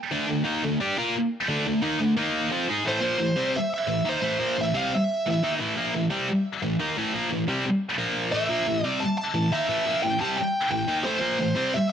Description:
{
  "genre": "metal",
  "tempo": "176 BPM",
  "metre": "4/4",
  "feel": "straight",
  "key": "A phrygian",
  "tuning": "A4 = 440 Hz",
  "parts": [
    { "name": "heavy high-gain guitar", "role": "riff", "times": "0.1-11.7 s", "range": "A2 to Bb4", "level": "-24 LUFS", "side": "equal", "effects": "distortion" },
    { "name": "bluesy overdriven lead guitar", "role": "melody", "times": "2.9-5.5, 8.3-11.9 s", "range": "C5 to A5", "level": "-27 LUFS", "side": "right 1 dB", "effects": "distortion, digital delay" }
  ],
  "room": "light reverb",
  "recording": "dark, warm production",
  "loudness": "-23 LUFS",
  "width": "side -8 dB against mid",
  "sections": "0.0-2.9 A section; 2.9-11.9 B section",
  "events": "none",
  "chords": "0.0 D5; 2.2 D#5; 2.5 Fm7; 2.9 Am; 8.0 Bb5; 8.3 Am"
}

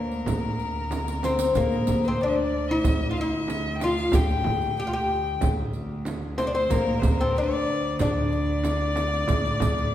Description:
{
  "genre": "Arabic maqam ensemble",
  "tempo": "93 BPM",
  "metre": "4/4",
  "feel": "straight",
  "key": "D maqam bayati",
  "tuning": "A4 = 440 Hz",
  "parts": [
    { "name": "oud", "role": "melody", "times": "0.0-9.9 s", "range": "Bb3 to G4", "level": "-26 LUFS", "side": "left 2 dB", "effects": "none" },
    { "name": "rich violin", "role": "second line", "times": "0.0-9.9 s", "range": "A4 to G5", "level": "-30 LUFS", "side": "left 4 dB", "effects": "none" },
    { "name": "upright bass", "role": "bass", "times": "0.0-9.9 s", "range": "D2", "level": "-29 LUFS", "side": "equal", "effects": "none" },
    { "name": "rich cello", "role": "drone", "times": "0.0-9.9 s", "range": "D2", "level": "-33 LUFS", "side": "right 1 dB", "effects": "none" },
    { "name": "darbuka", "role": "percussion", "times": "0.1-9.9 s", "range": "none", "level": "-32 LUFS", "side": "right 2 dB", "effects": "none" },
    { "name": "riq", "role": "percussion", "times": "0.1-9.9 s", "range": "none", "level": "-38 LUFS", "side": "right 4 dB", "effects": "none" },
    { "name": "frame drum", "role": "percussion", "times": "0.3-9.8 s", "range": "none", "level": "-33 LUFS", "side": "right 3 dB", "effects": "none" }
  ],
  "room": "wet recital hall reverb, RT60 1.6 s",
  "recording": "recorded in a church or concert hall",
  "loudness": "-22 LUFS",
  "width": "side -12 dB against mid",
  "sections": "0.0-9.9 A section",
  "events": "drum fill 0.9-1.6",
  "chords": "none"
}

